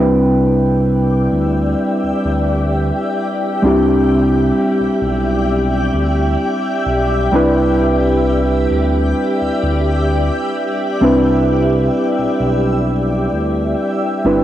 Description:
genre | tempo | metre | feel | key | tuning
R&B | 65 BPM | 4/4 | swing 54% on 16ths | C major | A4 = 440 Hz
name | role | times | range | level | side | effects
muted felt-like synth keys | accompaniment | 0.0-14.4 s | G3 to G5 | -15 LUFS | equal | chorus, cassette tape
granular cloud pad | sustained chords | 0.6-14.4 s | G4 to G5 | -20 LUFS | left 1 dB | built-in reverb, cassette tape
smooth gliding synth bass | bass | 0.0-14.4 s | G1 to D2 | -19 LUFS | equal | none
room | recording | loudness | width
wet booth ambience, RT60 0.2 s | home recording on cassette | -13 LUFS | side -12 dB against mid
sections
0.0-14.4 A section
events
none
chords
0.0 Cmaj9

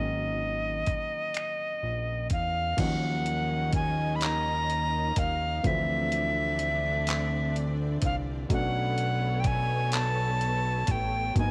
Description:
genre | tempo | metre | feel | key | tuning
slow six-eight R&B | 42 BPM (dotted quarters) | 6/8 | straight | unclear | A4 = 440 Hz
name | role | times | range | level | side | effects
bright alto recorder | melody | 0.0-11.5 s | Eb5 to Cb6 | -32 LUFS | equal | none
warm concert grand piano | accompaniment | 0.0-11.5 s | Eb3 to Eb4 | -39 LUFS | equal | none
fat analog bass | bass | 0.0-11.5 s | Ab1 to Fb2 | -33 LUFS | equal | none
dusty soul sampler-style drum kit | drums | 0.9-11.5 s | crash cymbal, finger snaps, handclaps, hi-hat, kick drum | -33 LUFS | equal | none
rich studio string section | sustained chords | 2.8-11.5 s | D3 to Eb5 | -40 LUFS | equal | none
room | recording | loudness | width
light reverb, small room ambience | none | -28 LUFS | mono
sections
0.0-2.8 A section; 2.8-11.5 B section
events
none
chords
0.0 Ab9sus4; 2.8 Ebm9; 5.6 Dm9; 8.5 Bm9

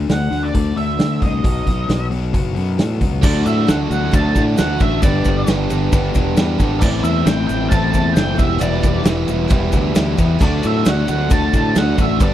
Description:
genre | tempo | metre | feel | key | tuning
classic rock | 134 BPM | 4/4 | straight | unclear | A4 = 440 Hz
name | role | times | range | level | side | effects
overdriven semi-hollow guitar | riff | 0.0-12.3 s | G2 to E4 | -22 LUFS | left 9 dB | none
growling fingered electric bass | bass | 0.0-12.3 s | E1 to D3 | -20 LUFS | equal | overdrive
octave-fuzz lead guitar | melody | 0.1-12.3 s | D5 to A5 | -24 LUFS | right 3 dB | distortion
vintage drum kit | drums | 0.1-12.3 s | crash cymbal, hi-hat, kick drum, ride cymbal, snare drum | -18 LUFS | equal | none
picked steel-string acoustic guitar | accompaniment | 3.2-12.3 s | E2 to A4 | -28 LUFS | right 5 dB | none
biting overdriven guitar | riff | 3.2-12.3 s | E2 to G4 | -24 LUFS | right 11 dB | none
tube shaker | percussion | 3.2-12.3 s | none | -38 LUFS | left 8 dB | none
room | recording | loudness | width
little or no reverb | none | -14 LUFS | side -12 dB against mid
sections
0.0-3.2 A section; 3.2-12.3 B section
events
none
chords
0.0 D5; 1.4 B; 3.2 D; 5.0 Gadd9; 6.8 Am; 8.4 Em; 10.4 D

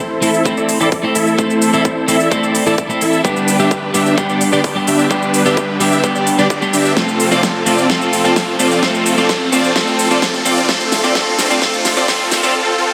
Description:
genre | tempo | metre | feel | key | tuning
EDM, festival progressive house | 129 BPM | 4/4 | straight | unclear | A4 = 440 Hz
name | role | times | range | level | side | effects
lush unison pad | sustained chords | 0.0-12.5 s | F3 to D5 | -24 LUFS | equal | chorus, phaser, sidechain pumping
dense compressed supersaw | riff | 0.0-12.9 s | C4 to E5 | -18 LUFS | equal | sidechain pumping, low-pass filter, digital delay
riser | sound effects | 0.1-12.5 s | none | -27 LUFS | equal | none
electric guitar at the edge of break-up | accompaniment | 0.2-12.5 s | G3 to A4 | -20 LUFS | equal | analog chorus, sidechain pumping, digital delay
big-room dance drum kit | drums | 0.2-12.5 s | hi-hat, shaker, snare drum | -22 LUFS | equal | none
electronic kick drum | drums | 0.5-12.2 s | none | -24 LUFS | equal | high-pass filter on kick
room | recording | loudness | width
moderate lush hall reverb, RT60 2.1 s | high-pass filter | -14 LUFS | mono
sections
0.0-12.9 A section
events
build-up 0.0-12.9; filter sweep on supersaw synth 0.0-12.9; filter sweep 0.0-12.9; riser 0.1-12.5; drum fill 7.0-12.5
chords
0.0 Am; 3.2 G; 7.0 F

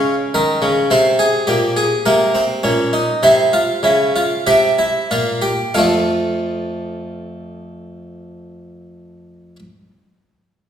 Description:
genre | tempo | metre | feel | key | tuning
classical, baroque-style 3-part fugue for harpsichord | 46-54 BPM | 4/4 | straight | unclear | A4 = 440 Hz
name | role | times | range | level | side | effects
harpsichord | solo | 0.0-9.6 s | F2 to F5 | -14 LUFS | equal | none
room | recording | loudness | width
wet recital hall reverb, RT60 1.6 s | heard from further back in the room | -13 LUFS | side -9 dB against mid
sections
0.0-5.8 A section; 5.8-10.7 B section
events
slowing down 0.0-5.8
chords
0.0 Gm7b5 (rootless); 0.9 C5; 3.2 C7; 5.8 F

